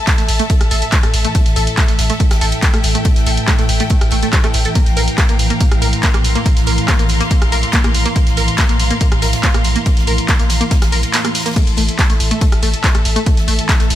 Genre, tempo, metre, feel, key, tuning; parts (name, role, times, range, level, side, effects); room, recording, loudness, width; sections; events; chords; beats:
driving peak-time techno; 141 BPM; 4/4; straight; A phrygian; A4 = 439 Hz
deep dark ambient pad; drone; 0.1-14.0 s; A2 to E3; -23 LUFS; right 1 dB; chorus, built-in reverb, sidechain pumping
dark studio string section; texture; 0.0-14.0 s; A4 to C6; -23 LUFS; left 2 dB; sidechain pumping
tight sequenced synth; riff; 0.1-13.8 s; G3 to Bb4; -23 LUFS; equal; chorus, cassette tape, sidechain pumping, tape echo
electronic kick drum; drums; 0.1-13.8 s; -14 LUFS; equal
swinging big-band drum kit; drums; 0.1-14.0 s; ride cymbal, snare drum; -30 LUFS; left 2 dB
techno drum kit; drums; 0.1-14.0 s; crash cymbal, handclaps, hi-hat, ride cymbal, rim click; -19 LUFS; equal; sidechain pumping on hats, sidechain pumping on cymbals
saturated sub bass; bass; 0.2-14.0 s; A1 to Bb1; -18 LUFS; equal; overdrive, sidechain pumping, low-pass filter
small room ambience; -12 LUFS; side -12 dB against mid
0.0-14.0 A section
kick drops out 11.1-11.6
0.0 A5; 4.8 Bb5; 11.6 Am
0.07 0.50 0.93 | 1.35 1.78 2.20 2.63 | 3.05 3.48 3.90 4.33 | 4.75 5.18 5.61 6.03 | 6.46 6.88 7.31 7.73 | 8.16 8.58 9.01 9.44 | 9.86 10.29 10.71 11.14 | 11.56 11.99 12.41 12.84 | 13.27 13.69